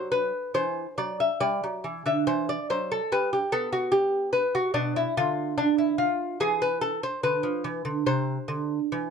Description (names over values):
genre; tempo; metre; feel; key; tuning
classical, baroque-style dance for lute; 72 BPM; 4/4; rubato; unclear; A4 = 443 Hz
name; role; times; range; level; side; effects
lute; solo; 0.0-9.1 s; B2 to E5; -24 LUFS; equal; none
room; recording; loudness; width
light reverb; dark, warm production; -24 LUFS; side -6 dB against mid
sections
0.0-9.1 A section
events
none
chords
0.0 D13; 1.4 G; 4.7 Bdim; 6.4 E5; 8.1 Cadd9